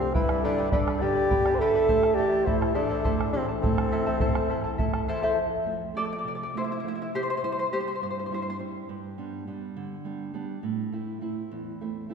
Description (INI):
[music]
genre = andean folk, Andean ensemble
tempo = 68 BPM (dotted quarters)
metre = 6/8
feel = straight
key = A minor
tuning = A4 = 440 Hz
[part]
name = warm bassoon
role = melody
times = 0.0-4.7 s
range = C4 to C5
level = -25 LUFS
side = equal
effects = slapback echo
[part]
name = mellow large quena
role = second line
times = 0.0-4.7 s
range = G4 to A5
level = -32 LUFS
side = left 3 dB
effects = none
[part]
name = charango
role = accompaniment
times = 0.0-8.6 s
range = E4 to B5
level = -30 LUFS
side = left 2 dB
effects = none
[part]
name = nylon-string guitar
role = accompaniment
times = 0.0-12.1 s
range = E2 to E4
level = -32 LUFS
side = right 4 dB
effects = none
[part]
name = bombo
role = percussion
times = 0.1-5.1 s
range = none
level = -29 LUFS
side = equal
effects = none
[sound]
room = wet concert hall reverb, RT60 2.3 s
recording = heard from further back in the room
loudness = -24 LUFS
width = side -6 dB against mid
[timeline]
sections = 0.0-5.4 A section; 5.4-12.1 B section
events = charango solo 5.4-12.1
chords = 0.1 G; 1.9 Am; 5.4 F; 7.1 C; 8.9 G; 10.6 Am